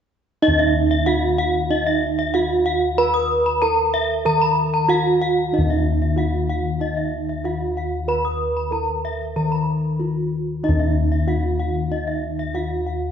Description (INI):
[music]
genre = Balinese gamelan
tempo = 94 BPM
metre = 4/4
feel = straight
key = Eb pelog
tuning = A4 = 440 Hz
[part]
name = gamelan-type bronze metallophone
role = melody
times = 0.4-13.1 s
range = Eb4 to Cb5-40c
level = -23 LUFS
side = right 4 dB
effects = none
[part]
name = gamelan-type bronze metallophone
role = arpeggios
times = 0.4-13.0 s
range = Eb5 to Eb6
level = -23 LUFS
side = left 2 dB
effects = none
[part]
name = gamelan-type bossed gongs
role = bass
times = 0.4-13.1 s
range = Eb2 to Cb5-40c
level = -22 LUFS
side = left 2 dB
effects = none
[sound]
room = wet recital hall reverb, RT60 1.6 s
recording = heard from further back in the room, nothing above 7.9 kHz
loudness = -18 LUFS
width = side -8 dB against mid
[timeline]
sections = 0.4-13.1 A section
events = none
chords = none